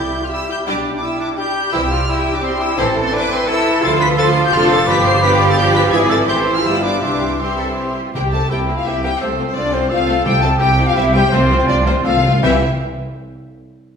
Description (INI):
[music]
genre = quick classical-period movement for symphony orchestra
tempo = 170 BPM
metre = 3/4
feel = rubato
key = C major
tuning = A4 = 441 Hz
[part]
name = rich chamber violin section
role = melody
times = 0.0-12.6 s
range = C5 to C7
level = -23 LUFS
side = left 3 dB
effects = none
[part]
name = hollow concert flute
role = second line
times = 0.0-12.6 s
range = C5 to D6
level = -22 LUFS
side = left 1 dB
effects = none
[part]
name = mellow cor anglais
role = second line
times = 0.0-12.6 s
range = C4 to G5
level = -23 LUFS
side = right 3 dB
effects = none
[part]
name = clear bassoon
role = accompaniment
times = 0.0-8.0, 12.4-12.6 s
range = E3 to G3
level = -24 LUFS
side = right 1 dB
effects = none
[part]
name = warm French horn section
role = sustained chords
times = 0.0-12.6 s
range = C4 to C5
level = -21 LUFS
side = left 3 dB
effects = none
[part]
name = dark chamber cello section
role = bass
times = 0.0-12.6 s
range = C2 to B4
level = -23 LUFS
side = right 2 dB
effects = none
[part]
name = timpani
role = percussion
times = 0.0-0.1, 4.9-5.4, 8.1-12.6 s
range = G2 to C3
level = -24 LUFS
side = left 1 dB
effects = none
[part]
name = warm chamber violin section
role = second line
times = 0.7-12.6 s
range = C4 to E5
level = -25 LUFS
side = left 3 dB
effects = none
[part]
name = rich studio viola section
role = accompaniment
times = 0.7-12.6 s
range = E3 to F4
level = -23 LUFS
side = right 1 dB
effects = none
[part]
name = warm chamber double bass section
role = bass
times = 0.7-12.6 s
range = F1 to D2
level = -22 LUFS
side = right 2 dB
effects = none
[sound]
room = wet recital hall reverb, RT60 1.5 s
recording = recorded in a church or concert hall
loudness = -13 LUFS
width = side -6 dB against mid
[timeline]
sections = 0.0-8.1 A section; 8.1-12.4 B section; 12.4-13.5 C section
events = timpani fill 11.3-12.4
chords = 0.0 C; 0.7 G/B; 1.7 C; 2.8 Am; 3.8 Dm7; 4.9 G5; 5.9 E7/G#; 6.3 Am; 6.6 G7; 7.0 C; 8.1 C7; 9.2 F/C; 10.3 C; 11.3 F/C; 12.4 C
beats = 0.32 | 0.68 1.03 1.38 | 1.74 2.09 2.44 | 2.79 3.14 3.49 | 3.83 4.18 4.53 | 4.87 5.22 5.58 | 5.93 6.28 6.64 | 7.02 7.40 7.77 | 8.14 8.50 8.86 | 9.21 9.56 9.91 | 10.26 10.61 10.96 | 11.32 11.68 12.05 | 12.42